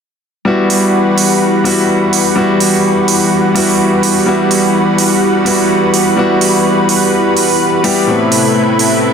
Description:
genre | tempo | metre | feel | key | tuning
EDM, festival progressive house | 126 BPM | 4/4 | straight | E minor | A4 = 440 Hz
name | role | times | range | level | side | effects
clear concert grand piano | accompaniment | 0.4-9.1 s | A2 to G4 | -12 LUFS | left 2 dB | tape echo
lush unison pad | sustained chords | 0.5-9.1 s | C3 to B4 | -13 LUFS | right 1 dB | chorus
electronic hi-hat | drums | 0.7-8.9 s | none | -17 LUFS | right 6 dB | studio reverb
room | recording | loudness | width
moderate lush hall reverb, RT60 1.8 s, small room ambience | dense, heavily limited modern master | -9 LUFS | side -6 dB against mid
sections
0.5-9.1 A section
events
none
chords
0.5 Emadd9; 8.1 Amadd9

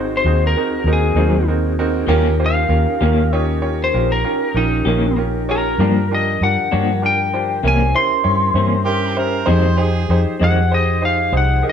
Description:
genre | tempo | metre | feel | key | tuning
slow blues | 65 BPM (dotted quarters) | 12/8 | straight | Eb mixolydian | A4 = 440 Hz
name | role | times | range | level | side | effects
lightly driven lead guitar | melody | 0.0-11.7 s | Eb4 to C6 | -19 LUFS | left 2 dB | none
bright upright piano | accompaniment | 0.0-11.7 s | C4 to Eb5 | -22 LUFS | right 3 dB | none
mellow tonewheel organ | sustained chords | 0.0-11.7 s | D3 to C5 | -26 LUFS | equal | slow rotary speaker
vintage muted fingered electric bass | bass | 0.0-11.6 s | Ab1 to G2 | -18 LUFS | equal | none
electric guitar through a small old amp | accompaniment | 1.2-10.6 s | F2 to G4 | -21 LUFS | left 3 dB | tremolo
mellow harmonica | second line | 8.8-10.2 s | G4 to C5 | -24 LUFS | right 3 dB | none
room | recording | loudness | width
moderate studio reverb, RT60 0.8 s | band playing live in one room | -14 LUFS | side -8 dB against mid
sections
0.0-11.7 A section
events
none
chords
0.0 Ab7; 2.1 Eb7; 5.8 Gm7; 7.6 C7b9; 9.5 Fm7

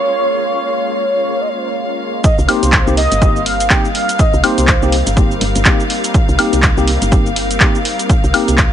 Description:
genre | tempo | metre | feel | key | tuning
deep house | 123 BPM | 4/4 | swing 59% on 16ths | C phrygian | A4 = 441 Hz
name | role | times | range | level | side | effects
warm velvety synth lead | melody | 0.0-5.1 s | C5 to G5 | -18 LUFS | right 1 dB | chorus, cassette tape, ping-pong delay
soft string machine | sustained chords | 0.0-8.7 s | G3 to C6 | -23 LUFS | left 1 dB | ensemble chorus, vintage 12-bit sampler grit, sidechain pumping
clear chamber violin section | texture | 0.0-8.7 s | F5 | -25 LUFS | left 2 dB | none
electronic kick drum | drums | 2.2-8.7 s | none | -14 LUFS | equal | none
punchy analog drum machine | drums | 2.2-8.7 s | handclaps, hi-hat, shaker, woodblock | -16 LUFS | equal | none
woody FM bass | bass | 2.4-8.7 s | G1 to C2 | -17 LUFS | equal | sidechain pumping
tine electric piano | stabs | 2.5-8.6 s | Bb3 to G4 | -19 LUFS | left 1 dB | medium stereo tremolo, vintage 12-bit sampler grit, sidechain pumping, ping-pong delay
room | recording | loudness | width
digital ambience | nothing above 10.6 kHz | -11 LUFS | side -10 dB against mid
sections
0.0-2.2 A section; 2.2-8.7 B section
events
drop 2.2-8.7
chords
0.0 Bbm7; 2.2 Cm7

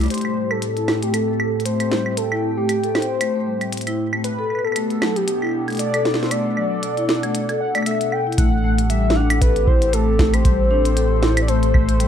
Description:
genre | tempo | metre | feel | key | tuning
IDM | 116 BPM | 4/4 | swing 56% on 16ths | A dorian | A4 = 439 Hz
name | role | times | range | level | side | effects
hollow soft pad | sustained chords | 0.0-12.1 s | A2 to G5 | -26 LUFS | right 1 dB | chorus
vibraphone with soft mallets | arpeggios | 0.0-12.1 s | F#3 to A4 | -24 LUFS | left 4 dB | low-pass filter, tape echo
warm sub bass | bass | 0.0-0.1, 8.4-12.1 s | A1 | -19 LUFS | equal | none
glitchy drum kit | drums | 0.0-12.1 s | claves, hi-hat, snare drum | -25 LUFS | right 1 dB | overdrive, studio ambience
warm velvety synth lead | melody | 0.1-12.1 s | G4 to G5 | -23 LUFS | left 1 dB | chorus, vintage 12-bit sampler grit, ping-pong delay
electronic kick drum | drums | 8.4-11.9 s | none | -18 LUFS | equal | studio ambience
room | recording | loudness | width
light reverb | dark, warm production | -17 LUFS | side -9 dB against mid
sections
0.1-8.4 A section; 8.4-12.1 B section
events
none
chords
0.1 Am7; 4.2 Bm7; 8.4 Am7

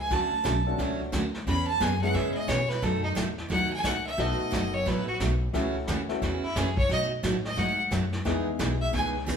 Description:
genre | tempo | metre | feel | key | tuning
country, western swing | 177 BPM | 4/4 | swing 63% on 8ths | unclear | A4 = 440 Hz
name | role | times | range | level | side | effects
bright fiddle | second line | 0.0-9.1 s | D#4 to B5 | -29 LUFS | right 1 dB | none
upright bass | bass | 0.0-9.4 s | F#1 to B2 | -31 LUFS | left 1 dB | none
picked steel-string acoustic guitar | accompaniment | 0.1-9.4 s | B2 to G#4 | -31 LUFS | right 3 dB | none
vintage brush drum kit | drums | 0.1-9.4 s | brushed snare drum, hi-hat, kick drum, snare drum, toms | -34 LUFS | equal | none
warm upright piano | accompaniment | 0.7-6.2, 8.3-9.2 s | G#3 to A4 | -32 LUFS | left 3 dB | none
room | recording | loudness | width
moderate large studio reverb, RT60 0.9 s | band playing live in one room | -25 LUFS | side -7 dB against mid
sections
0.0-9.4 A section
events
fiddle solo 0.0-9.4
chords
0.1 Dmaj7; 1.5 C#m7; 2.8 B7; 5.5 F#m7; 6.9 B7; 8.3 Emaj7

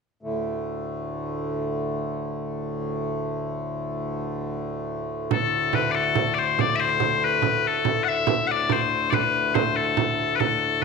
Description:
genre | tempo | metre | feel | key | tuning
medieval dance | 94 BPM (dotted quarters) | 6/8 | straight | unclear | A4 = 440 Hz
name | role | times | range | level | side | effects
hand-pumped harmonium | drone | 0.2-10.8 s | D2 to A2 | -28 LUFS | equal | none
loud bright bagpipes | melody | 5.3-10.8 s | A4 to F#5 | -22 LUFS | left 8 dB | slapback echo
frame drum | percussion | 5.3-10.8 s | none | -26 LUFS | right 10 dB | none
room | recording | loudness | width
wet echo chamber reverb, RT60 1.5 s, studio ambience | 1960s-style stereo with parts hard left and right | -22 LUFS | side -4 dB against mid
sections
0.2-5.3 A section; 5.3-10.8 B section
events
none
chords
none

